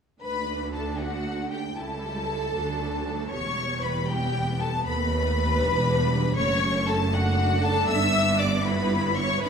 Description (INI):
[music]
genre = quick classical-period movement for string orchestra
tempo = 78 BPM (dotted quarters)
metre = 6/8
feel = rubato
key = D major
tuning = A4 = 440 Hz
[part]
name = rich studio violin section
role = melody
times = 0.2-9.5 s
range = F#5 to E6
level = -29 LUFS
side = left 5 dB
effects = none
[part]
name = rich symphonic violin section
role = second line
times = 0.2-9.5 s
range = F#4 to E5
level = -29 LUFS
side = equal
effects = none
[part]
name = clear symphonic viola section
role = accompaniment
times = 0.2-9.5 s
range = F#3 to E4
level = -31 LUFS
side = right 2 dB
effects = none
[part]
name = bright symphonic cello section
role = bass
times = 0.2-9.5 s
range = C#2 to G#2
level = -30 LUFS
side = right 2 dB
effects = none
[part]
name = clear symphonic double bass section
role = bass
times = 0.2-9.5 s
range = E1 to D#2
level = -30 LUFS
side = right 1 dB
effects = none
[sound]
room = wet recital hall reverb, RT60 1.4 s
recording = minimal, uncompressed stereo recording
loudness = -23 LUFS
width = side -6 dB against mid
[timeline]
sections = 0.2-9.5 A section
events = none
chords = 0.2 D; 1.8 A7/C#; 2.5 D; 3.3 Em; 4.9 B7/D#; 5.6 Em7; 6.4 F#m; 7.1 D/F#; 7.9 G; 8.7 Em/G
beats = | 0.23 1.00 | 1.77 2.54 | 3.32 4.09 | 4.86 5.61 | 6.36 7.13 | 7.89 8.66 | 9.42